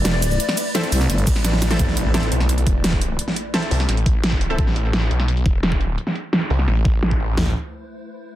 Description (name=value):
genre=dark technical drum and bass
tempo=172 BPM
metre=4/4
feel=straight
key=A minor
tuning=A4 = 441 Hz
part: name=swarming drone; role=sustained chords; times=0.0-1.8, 7.5 s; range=A3 to D5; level=-29 LUFS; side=left 2 dB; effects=built-in reverb, sidechain pumping
part: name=growling FM bass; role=bass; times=0.0-1.3 s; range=E1 to C2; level=-19 LUFS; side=equal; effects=none
part: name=dubstep drum kit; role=drums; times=0.1-7.3 s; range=hi-hat, ride cymbal, shaker, snare drum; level=-22 LUFS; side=right 1 dB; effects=overdrive, low-pass filter on hats, low-pass filter on cymbals, low-pass filter on perc, low-pass filter on snare, low-pass filter on room
part: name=orchestra-hit-like synth stab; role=stabs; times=0.7-4.6 s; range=C4 to A4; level=-29 LUFS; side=equal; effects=built-in reverb, tape echo
part: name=snarling distorted saw bass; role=bass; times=1.3-7.5 s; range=E1 to C2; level=-20 LUFS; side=equal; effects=distortion, sidechain pumping
part: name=dubstep drum kit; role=drums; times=1.3-7.5 s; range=kick drum, snare drum, toms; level=-20 LUFS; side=equal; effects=overdrive
part: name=impact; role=sound effects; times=1.8-3.2 s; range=none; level=-28 LUFS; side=equal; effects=none
room=digital ambience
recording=dense, heavily limited modern master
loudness=-17 LUFS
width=side -14 dB against mid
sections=0.0-1.8 A section; 1.8-7.4 B section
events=drop 0.0-1.8; kick drops out 1.4-1.8; drum fill 1.4-1.8; impact 1.8-3.2; filter sweep on drum 1.8-7.4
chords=0.0 Am